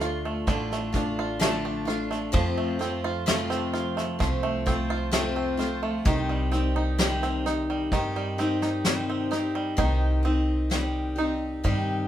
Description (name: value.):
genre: acoustic folk duo or small band.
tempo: 64 BPM.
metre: 4/4.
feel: straight.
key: C dorian.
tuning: A4 = 440 Hz.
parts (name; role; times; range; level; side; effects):
picked steel-string acoustic guitar; accompaniment; 0.0-12.1 s; F2 to G4; -28 LUFS; left 2 dB; none.
bluegrass banjo; arpeggios; 0.0-12.1 s; D3 to F4; -30 LUFS; right 4 dB; none.
upright bass; bass; 0.0-12.1 s; A1 to G2; -30 LUFS; equal; none.
soft brush drum kit; drums; 0.0-11.9 s; kick drum, snare drum; -28 LUFS; equal; none.
room: wet studio reverb, RT60 0.6 s.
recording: band playing live in one room.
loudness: -24 LUFS.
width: side -11 dB against mid.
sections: 0.0-9.8 A section; 9.8-12.1 B section.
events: none.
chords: 0.0 Dm; 2.3 F; 6.1 Cm.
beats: 0.47 1.40 | 2.33 3.27 4.20 5.13 | 6.06 6.99 7.92 8.86 | 9.79 10.72 11.65.